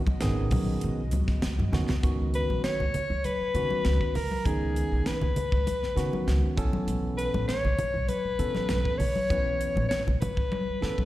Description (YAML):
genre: electric jazz fusion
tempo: 99 BPM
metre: 4/4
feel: straight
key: C# minor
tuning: A4 = 440 Hz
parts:
  - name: airy breathy pad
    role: sustained chords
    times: 0.0-2.0 s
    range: C#3 to D#5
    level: -41 LUFS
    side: left 1 dB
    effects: chorus
  - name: upright bass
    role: bass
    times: 0.0-11.0 s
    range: G#1 to C#3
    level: -29 LUFS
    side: equal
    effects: none
  - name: crisp fusion drum kit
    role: drums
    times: 0.1-11.1 s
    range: hi-hat, kick drum, snare drum, toms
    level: -31 LUFS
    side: equal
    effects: none
  - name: congas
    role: percussion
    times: 0.1-11.1 s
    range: none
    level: -33 LUFS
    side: left 1 dB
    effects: slapback echo
  - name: barky tine electric piano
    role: accompaniment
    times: 0.2-11.1 s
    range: D#3 to B4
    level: -32 LUFS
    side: right 2 dB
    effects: overdrive, slapback echo
  - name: mellow soprano saxophone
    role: melody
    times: 2.3-11.1 s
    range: G#4 to C#5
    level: -29 LUFS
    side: left 2 dB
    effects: slapback echo, tape echo
room: light reverb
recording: live gig heard through the venue's PA, recital hall reverb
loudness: -25 LUFS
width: side -15 dB against mid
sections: 0.0-2.0 A section; 2.0-11.1 B section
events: drum fill 1.6-2.0, 10.5-11.1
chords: 0.0 C#9sus4; 6.6 B9sus4